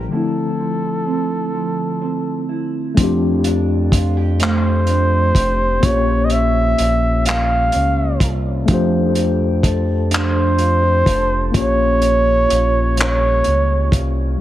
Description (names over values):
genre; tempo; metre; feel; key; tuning
slow six-eight R&B; 42 BPM (dotted quarters); 6/8; straight; F major; A4 = 440 Hz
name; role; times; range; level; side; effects
mellow electric guitar; second line; 0.0-14.4 s; Bb2 to A4; -25 LUFS; right 7 dB; lush chorus, analog delay
mellow tine electric piano; accompaniment; 0.0-14.4 s; D3 to Db5; -21 LUFS; left 4 dB; medium stereo tremolo, analog delay
smooth synth bass; bass; 0.0-14.4 s; F1 to F2; -18 LUFS; equal; none
warm flugelhorn; melody; 0.1-14.0 s; A4 to F5; -19 LUFS; right 1 dB; analog delay
cloth-damped thuddy drum kit; drums; 3.0-14.2 s; handclaps, hi-hat, kick drum; -18 LUFS; equal; none
room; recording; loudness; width
light reverb, small room reverb; echo-heavy mix; -14 LUFS; side -13 dB against mid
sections
0.0-3.0 A section; 3.0-14.4 B section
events
none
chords
0.1 Dm9; 3.0 F69; 5.8 Bbm6; 8.7 F69; 11.5 Bbm6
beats
| 0.12 1.54 | 2.97 4.40 | 5.83 7.26 | 8.69 10.12 | 11.54 12.97 | 14.40